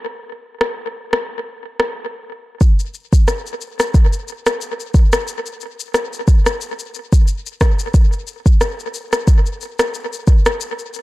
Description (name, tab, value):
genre	dancehall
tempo	90 BPM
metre	4/4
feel	swing 56% on 16ths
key	none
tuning	none
part	afro-pop drum kit	drums	0.6-11.0 s	kick drum, rim click, shaker	-15 LUFS	equal	tape echo
room	light reverb, digital ambience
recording	echo-heavy mix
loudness	-15 LUFS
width	side -19 dB against mid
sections	0.0-2.6 A section; 2.6-11.0 B section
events	break 1.9-2.6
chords	none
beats	0.61 1.27 1.94 | 2.61 3.27 3.94 4.61 | 5.28 5.94 6.61 7.28 | 7.94 8.61 9.28 9.94 | 10.61